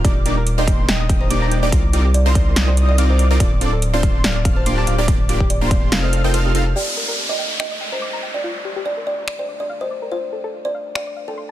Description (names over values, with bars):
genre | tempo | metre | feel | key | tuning
future bass | 143 BPM | 4/4 | swing 54% on 16ths, half-time | unclear | A4 = 440 Hz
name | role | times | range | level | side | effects
kalimba | melody | 0.0-11.5 s | G4 to Eb5 | -26 LUFS | right 1 dB | sidechain pumping, dub echo
airy dreamy lead | arpeggios | 0.0-6.6 s | C6 to G6 | -30 LUFS | equal | chorus, sidechain pumping, dub echo
soft round pluck | arpeggios | 0.0-11.5 s | F4 to D6 | -31 LUFS | left 4 dB | chorus, cassette tape, sidechain pumping, dub echo
supersaw stab | riff | 0.0-6.6 s | Bb3 to G5 | -24 LUFS | right 1 dB | sidechain pumping
saturated sub bass | bass | 0.0-6.7 s | D1 to C2 | -18 LUFS | equal | sidechain pumping
big-room dance drum kit | drums | 0.0-11.0 s | finger snaps, hi-hat, snare drum | -23 LUFS | equal | studio reverb, soft clipping on snare
electronic kick drum | drums | 0.0-5.8 s | none | -18 LUFS | equal | studio reverb
downlifter | sound effects | 6.8-10.1 s | none | -25 LUFS | equal | none
room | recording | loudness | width
digital ambience | dense, heavily limited modern master | -16 LUFS | side -13 dB against mid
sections
0.0-6.8 A section; 6.8-11.5 B section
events
drop 0.0-6.8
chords
0.0 Ebmaj7; 1.7 Cm11; 3.4 Dm7; 4.9 Gm7/D; 5.9 F7; 6.8 Ebmaj7; 8.4 Cm9 (rootless); 10.1 Dm7